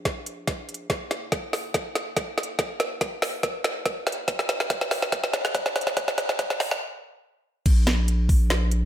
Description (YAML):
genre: future bass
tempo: 142 BPM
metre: 4/4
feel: swing 53% on 16ths, half-time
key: unclear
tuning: A4 = 440 Hz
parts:
  - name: saturated sub bass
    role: bass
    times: 0.0-8.9 s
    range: F1 to Bb1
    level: -25 LUFS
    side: equal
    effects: sidechain pumping, high-pass filter
  - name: electronic kick drum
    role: drums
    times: 0.1-8.4 s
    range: none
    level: -23 LUFS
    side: equal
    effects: none
  - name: trap drum kit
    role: drums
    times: 0.1-8.8 s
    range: crash cymbal, hi-hat, snare drum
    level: -25 LUFS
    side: equal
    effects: none
room: moderate digital room reverb, RT60 1.0 s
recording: high-pass filter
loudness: -23 LUFS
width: side -11 dB against mid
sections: 0.0-7.7 A section; 7.7-8.9 B section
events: build-up 0.0-7.7; drum fill 0.0-6.8; stop 6.8-7.7; drop 7.7-8.9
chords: none